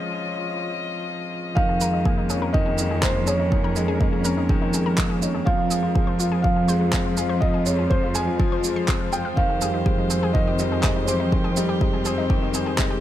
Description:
piano and strings electronica; 123 BPM; 4/4; straight; A4 = 442 Hz
dark string quartet; sustained chords; 0.0-13.0 s; F3 to Eb5; -31 LUFS; left 2 dB
clear upright piano; riff; 0.0-13.0 s; Eb3 to F4; -27 LUFS; left 2 dB; ping-pong delay
felt-muted upright piano; melody; 1.6-12.5 s; C5 to Ab5; -28 LUFS; right 2 dB; ping-pong delay
analog pluck; arpeggios; 1.6-13.0 s; Eb4 to C6; -33 LUFS; left 5 dB; chorus, cassette tape, sidechain pumping, ping-pong delay
warm studio cello section; bass; 1.6-13.0 s; F2; -25 LUFS; right 1 dB; tube saturation, sidechain pumping
electronic kick drum; drums; 1.6-12.9 s; -23 LUFS; equal
electronic shaker and handclaps; drums; 1.8-12.9 s; -28 LUFS; right 2 dB
light reverb; -20 LUFS; side -12 dB against mid
0.0-1.6 A section; 1.6-13.0 B section
break 0.0-1.6; build-up 0.0-1.6; drop 1.6-13.0
0.0 Dbmaj7/F; 1.6 Eb7sus4/F; 5.5 Fm; 9.4 Abmaj7/F

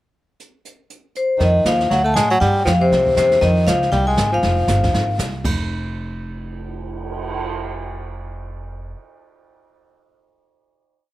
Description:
jazz, small-group swing and bop; 238 BPM; 4/4; swing 59% on 8ths; F minor; A4 = 440 Hz
jazz brush drum kit; drums; 0.4-7.4 s; brushed snare drum, crash cymbal, cymbal swell, hi-hat, kick drum, snare drum; -26 LUFS; right 2 dB
vibraphone with medium hard mallets; melody; 1.2-5.2 s; C5 to A5; -18 LUFS; left 2 dB; slapback echo
bright tenor saxophone; second line; 1.4-5.1 s; C3 to A3; -22 LUFS; right 2 dB; slapback echo
upright bass; bass; 1.4-8.9 s; F1 to A2; -21 LUFS; right 1 dB
little or no reverb; -15 LUFS; side -16 dB against mid
0.4-1.4 pickup bar; 1.4-5.4 A section; 5.4-7.5 final note
0.4 N.C.; 1.4 Ebsus2; 1.9 D5; 2.4 Fsus2; 2.9 C; 3.4 Fm7; 5.4 N.C.

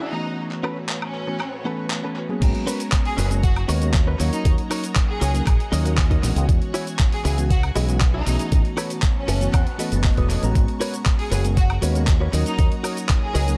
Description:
nu-disco, nu disco; 118 BPM; 4/4; straight; G# minor; A4 = 440 Hz
bright studio violin section; melody; 0.0-13.6 s; C#4 to G#4; -34 LUFS; equal; dub echo
string machine, full ensemble; sustained chords; 0.0-13.6 s; E3 to D#6; -39 LUFS; equal; phaser, ensemble chorus, sidechain pumping
direct-recorded clean electric guitar; riff; 0.0-13.5 s; C#4 to A5; -33 LUFS; equal; analog chorus, analog delay
bell-like tine electric piano; accompaniment; 0.1-13.6 s; E3 to A#5; -31 LUFS; equal; sidechain pumping, analog delay
dusty soul sampler-style drum kit; drums; 0.5-13.6 s; cabasa, crash cymbal, handclaps, hi-hat, woodblock; -32 LUFS; equal; small room ambience, analog delay
fingered electric bass with an envelope filter; bass; 2.4-13.5 s; E1 to E2; -24 LUFS; equal
electronic kick drum; drums; 2.4-13.2 s; -21 LUFS; equal; small room ambience
digital ambience; echo-heavy mix; -21 LUFS; mono
0.0-2.4 A section; 2.4-13.6 B section
drop 2.4-13.6; clean electric guitar fill 9.0-10.6
0.0 E69; 2.4 G#m11; 4.2 D#m7; 6.5 E69; 8.5 A69; 10.6 G#m11; 12.3 D#m7

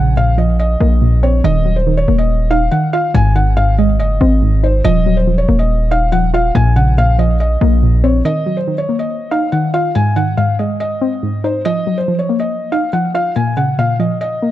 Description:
hip hop, trap; 141 BPM; 4/4; half-time; Eb dorian; A4 = 441 Hz
felt-muted upright piano; melody; 0.0-14.5 s; C5 to Ab5; -18 LUFS; equal
soft round pluck; accompaniment; 0.0-14.5 s; Ab2 to F4; -16 LUFS; equal; chorus
hard-hitting 808-style bass; bass; 0.0-8.2 s; Eb1 to Bb1; -13 LUFS; equal
small room ambience; dark, warm production; -12 LUFS; side -13 dB against mid
0.0-8.3 A section; 8.3-14.5 B section
0.0 Bbmadd9; 1.4 Ebmadd9; 3.1 Ab; 4.8 Ebmadd9; 6.5 Bbmadd9; 8.3 Ebmadd9; 10.0 Ab; 11.7 Ebmadd9; 13.4 Bbm

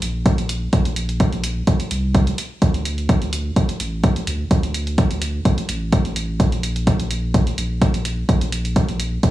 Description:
dub techno; 127 BPM; 4/4; straight; A4 = 440 Hz
warm sub bass; bass; 0.0-9.2 s; A1 to D2; -23 LUFS; equal; sidechain pumping
electronic hi-hat; drums; 0.0-9.3 s; -29 LUFS; right 2 dB
electronic kick drum; drums; 0.3-9.3 s; -17 LUFS; equal; overdrive
little or no reverb; studio ambience; -17 LUFS; side -15 dB against mid
0.0-9.3 A section

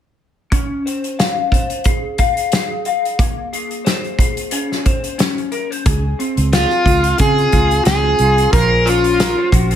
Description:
indie pop, bedroom pop; 90 BPM; 4/4; swing 55% on 16ths; Db major; A4 = 444 Hz
electric guitar through a small old amp; accompaniment; 0.5-9.8 s; Bb3 to F5; -21 LUFS; left 3 dB; ensemble chorus, warbly pitch drift
loose indie drum kit; drums; 0.5-9.8 s; hi-hat, kick drum, snare drum; -18 LUFS; equal
vintage muted fingered electric bass; bass; 5.9-9.8 s; Bb1 to Db3; -17 LUFS; right 1 dB
overdriven slide guitar; melody; 6.5-9.5 s; F4 to Bb4; -14 LUFS; equal; wide subtle chorus, plate reverb, tape echo
light reverb; -14 LUFS; side -10 dB against mid
0.5-5.9 A section; 5.9-9.8 B section
0.5 Dbmaj7; 3.2 Bbm9; 5.9 Dbmaj7; 8.5 Bbm9

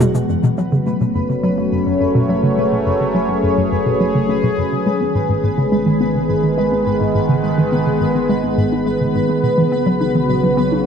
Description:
ambient; 105 BPM; 4/4; straight; F# dorian; A4 = 444 Hz
sweeping resonant pad; sustained chords; 0.0-10.9 s; C#3 to C#5; -17 LUFS; equal; chorus
hollow square pluck; riff; 0.0-10.8 s; F#2 to D#4; -19 LUFS; equal; chorus, cassette tape, ping-pong delay
fat analog bass; bass; 0.0-10.9 s; E1 to B1; -37 LUFS; equal
pulsing gated texture; texture; 0.0-10.9 s; F#4 to B5; -25 LUFS; right 2 dB; chorus, built-in reverb
wet plate reverb, RT60 3.5 s; dark, warm production; -14 LUFS; side -7 dB against mid
0.3-10.9 A section
fade-in on analog synth bass 0.3-10.9
0.3 F#madd9; 4.9 G#m; 9.4 Bsus2

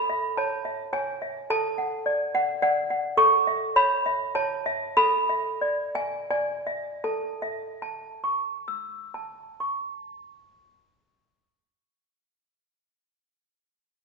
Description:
classical, lullaby for toy piano; 78-108 BPM; 3/4; straight; A major; A4 = 440 Hz
toy piano; solo; 0.0-12.8 s; A4 to E6; -24 LUFS; right 1 dB
wet recital hall reverb, RT60 1.6 s; recorded in a church or concert hall, nothing above 8.0 kHz; -24 LUFS; side -4 dB against mid
0.0-7.0 A section; 7.0-11.6 B section
slowing down 2.3-7.0
0.0 A; 1.5 D/A; 3.2 A; 5.0 E7/A; 7.0 A

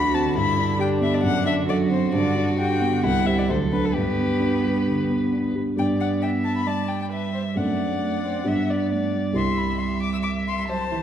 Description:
quick classical-period movement for piano quartet; 134 BPM; 4/4; straight; G major; A4 = 440 Hz
muted violin; melody; 0.0-11.0 s; G4 to E6; -28 LUFS; left 5 dB
muted cello; second line; 0.0-11.0 s; D3 to C4; -28 LUFS; right 7 dB
muted violin; second line; 0.0-11.0 s; D4 to E5; -30 LUFS; left 2 dB
dark concert grand piano; accompaniment; 0.0-11.0 s; C2 to A4; -23 LUFS; right 1 dB
wet recital hall reverb, RT60 1.7 s; dark, warm production; -20 LUFS; side -9 dB against mid
0.0-5.8 A section; 5.8-11.0 B section
0.4 G; 1.2 D7/F#; 2.1 G; 3.0 C; 3.5 D; 3.9 G; 7.6 D7/F#; 8.5 G; 9.4 C

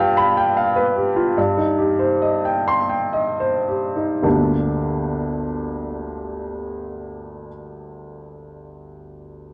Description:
classical, romantic character piece for solo piano; 52-82 BPM; 3/4; rubato; G minor; A4 = 440 Hz
bright upright piano; solo; 0.0-9.5 s; G1 to C6; -22 LUFS; equal
moderate recital hall reverb, RT60 1.3 s; worn, warbling old tape, cassette tape, warbly pitch drift; -20 LUFS; mono
0.0-4.2 A section; 4.2-9.5 B section
slowing down 0.0-4.2
0.0 G7; 1.4 Cm/G; 4.2 Gm

